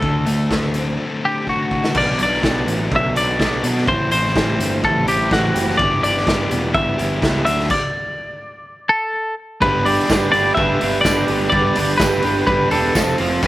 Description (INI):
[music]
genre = indie rock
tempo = 125 BPM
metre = 4/4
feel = straight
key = unclear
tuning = A4 = 441 Hz
[part]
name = twelve-string electric guitar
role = melody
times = 0.0-13.2 s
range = F#4 to E5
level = -19 LUFS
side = left 1 dB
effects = none
[part]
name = overdriven electric guitar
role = riff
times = 0.0-13.5 s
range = G2 to C5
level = -22 LUFS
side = left 2 dB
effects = slapback echo
[part]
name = fuzz picked electric bass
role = bass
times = 0.0-13.5 s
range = E1 to B2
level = -23 LUFS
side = equal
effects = overdrive
[part]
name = raw garage drum kit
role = drums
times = 0.0-13.5 s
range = crash cymbal, hi-hat, kick drum, snare drum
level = -22 LUFS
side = equal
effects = none
[part]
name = overdriven electric guitar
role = riff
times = 1.9-13.5 s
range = G2 to C5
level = -24 LUFS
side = right 6 dB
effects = slapback echo
[part]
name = tambourine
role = percussion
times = 10.1-13.1 s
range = none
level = -32 LUFS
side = right 6 dB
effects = none
[sound]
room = little or no reverb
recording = none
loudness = -15 LUFS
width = side -16 dB against mid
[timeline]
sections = 0.0-2.0 A section; 2.0-9.6 B section; 9.6-13.5 C section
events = drum fill 1.5-2.0; stop 7.7-9.6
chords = 0.0 D7; 2.0 Bm7; 3.9 Am7; 5.8 Em7; 7.5 D; 9.6 G; 13.0 F5